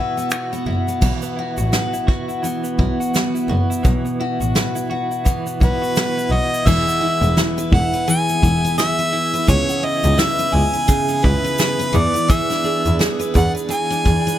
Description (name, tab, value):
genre	acoustic pop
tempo	85 BPM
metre	4/4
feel	swing 60% on 16ths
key	unclear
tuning	A4 = 440 Hz
part	picked steel-string acoustic guitar	accompaniment	0.0-14.4 s	B2 to B4	-22 LUFS	left 1 dB	none
part	direct-recorded clean electric guitar	arpeggios	0.0-14.4 s	E3 to G#4	-28 LUFS	right 6 dB	tremolo
part	soft brush drum kit	drums	0.2-14.4 s	crash cymbal, finger snaps, kick drum, shaker, snare drum	-20 LUFS	equal	none
part	clear double bass	bass	0.7-14.1 s	E1 to E2	-20 LUFS	equal	none
part	clear harmonica	melody	5.6-14.4 s	B4 to G#5	-20 LUFS	equal	ping-pong delay
room	small room reverb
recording	none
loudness	-16 LUFS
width	side -12 dB against mid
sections	0.0-1.0 A section; 1.0-6.7 B section; 6.7-14.4 C section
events	none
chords	0.0 Bsus4; 6.7 E; 9.5 C#m7; 11.9 E7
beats	0.32 | 1.03 1.73 2.44 3.14 | 3.85 4.55 5.26 5.96 | 6.67 7.37 8.08 8.78 | 9.48 10.19 10.89 11.59 | 12.30 13.00 13.70